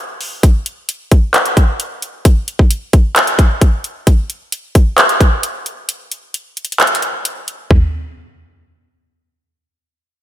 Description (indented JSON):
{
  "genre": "hip hop",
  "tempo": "132 BPM",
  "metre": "4/4",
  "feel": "half-time",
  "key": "none",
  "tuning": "none",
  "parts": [
    { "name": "trap drum kit", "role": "drums", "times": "0.2-7.8 s", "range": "handclaps, hi-hat, kick drum, toms", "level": "-11 LUFS", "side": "equal", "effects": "none" }
  ],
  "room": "moderate lush hall reverb, RT60 1.7 s",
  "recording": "none",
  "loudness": "-12 LUFS",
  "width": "side -12 dB against mid",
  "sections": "0.4-7.7 A section; 7.7-10.2 B section",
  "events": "break 0.0-0.4; kick muted 6.8-7.7",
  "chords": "none"
}